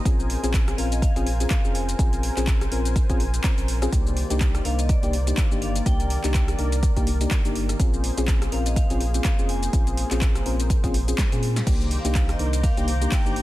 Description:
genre	deep house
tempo	124 BPM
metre	4/4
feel	swing 57% on 16ths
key	unclear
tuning	A4 = 438 Hz
part	warm analog pad	sustained chords	0.0-13.4 s	Eb3 to D6	-35 LUFS	equal	chorus, sidechain pumping
part	mellow FM electric piano	stabs	0.0-13.4 s	Bb3 to Bb4	-29 LUFS	left 3 dB	chorus, sidechain pumping, dub echo
part	sub bass with octave	bass	0.1-13.4 s	F1 to Bb2	-25 LUFS	equal	sidechain pumping
part	deep house drum kit	drums	0.1-13.4 s	crash cymbal, handclaps, hi-hat, ride cymbal, rim click, shaker, snare drum	-31 LUFS	equal	overdrive, small room reverb
part	electronic kick drum	drums	0.1-13.2 s	none	-22 LUFS	equal	overdrive, small room reverb
part	vibraphone with medium hard mallets	melody	0.8-13.4 s	D5 to Ab5	-36 LUFS	left 1 dB	digital delay
part	soft string machine	texture	11.9-13.4 s	Bb5 to G6	-37 LUFS	left 1 dB	ensemble chorus
room	digital ambience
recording	dense, heavily limited modern master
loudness	-20 LUFS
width	side -16 dB against mid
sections	0.0-13.4 A section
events	drum fill 11.2-11.7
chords	0.1 Bbm9; 3.9 Cm9; 7.8 Bbm9; 11.7 Cm9

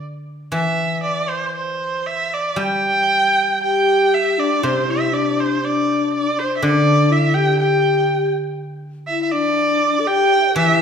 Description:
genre	chinese traditional, Chinese chamber ensemble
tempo	60 BPM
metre	2/4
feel	rubato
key	unclear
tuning	A4 = 440 Hz
part	clear erhu	melody	0.0-10.8 s	C5 to G5	-18 LUFS	right 2 dB	none
part	guzheng	accompaniment	0.0-10.8 s	C3 to G3	-23 LUFS	equal	none
part	mellow hollow low xiao	second line	3.6-10.8 s	D4 to E5	-19 LUFS	left 4 dB	none
room	wet scoring stage reverb, RT60 1.8 s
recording	minimal, uncompressed stereo recording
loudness	-16 LUFS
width	side -7 dB against mid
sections	0.0-4.6 A section; 4.6-10.8 B section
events	none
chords	none

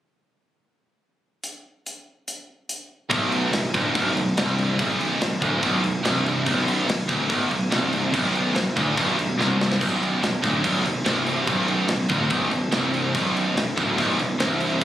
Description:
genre	heavy metal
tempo	144 BPM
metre	4/4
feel	straight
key	unclear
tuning	A4 = 441 Hz
part	tight metal drum kit	drums	1.4-14.8 s	crash cymbal, hi-hat, kick drum, snare drum, splash cymbal	-27 LUFS	equal	none
part	heavy high-gain guitar	riff	3.1-14.8 s	B1 to D2	-27 LUFS	left 6 dB	distortion
part	high-gain distorted guitar	riff	3.1-14.8 s	B1 to D2	-30 LUFS	left 1 dB	none
part	scooped high-gain guitar	riff	3.1-14.8 s	B1 to D2	-24 LUFS	right 5 dB	distortion
part	fuzz picked electric bass	bass	3.1-14.8 s	B0 to D1	-27 LUFS	equal	overdrive
room	light reverb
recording	recorded on a phone in the room, club reverb, compression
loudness	-20 LUFS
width	side -12 dB against mid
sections	1.4-3.1 A section; 3.1-14.8 B section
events	drum fill 9.4-9.8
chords	1.4 N.C.; 3.1 Bm

